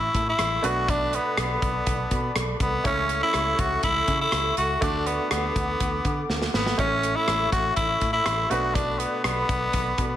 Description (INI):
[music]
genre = 1980s-style pop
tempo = 122 BPM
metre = 4/4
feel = straight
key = A major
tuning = A4 = 442 Hz
[part]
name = raspy tenor saxophone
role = melody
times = 0.0-10.2 s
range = B3 to F#4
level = -24 LUFS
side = equal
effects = digital delay
[part]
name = bright grand piano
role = accompaniment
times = 0.0-10.2 s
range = A2 to E5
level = -33 LUFS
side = right 2 dB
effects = none
[part]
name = sweeping resonant pad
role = sustained chords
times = 0.0-10.2 s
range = A4 to D6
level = -33 LUFS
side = equal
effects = chorus
[part]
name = vintage muted picked electric bass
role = bass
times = 0.0-10.2 s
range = G#1 to D3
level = -31 LUFS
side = equal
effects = none
[part]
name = modern studio drum kit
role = drums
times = 0.1-10.1 s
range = hi-hat, kick drum, rim click, snare drum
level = -28 LUFS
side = equal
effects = gated reverb
[sound]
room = light reverb, studio ambience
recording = none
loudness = -22 LUFS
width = side -11 dB against mid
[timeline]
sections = 0.0-10.2 A section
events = drum fill 6.3-6.8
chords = 0.0 A; 0.6 Bm7; 2.9 A/C#; 4.8 D; 6.8 A; 8.5 Bm7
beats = 0.39 | 0.89 1.38 1.87 2.36 | 2.85 3.34 3.83 4.33 | 4.82 5.31 5.80 6.29 | 6.79 7.28 7.77 8.26 | 8.75 9.24 9.74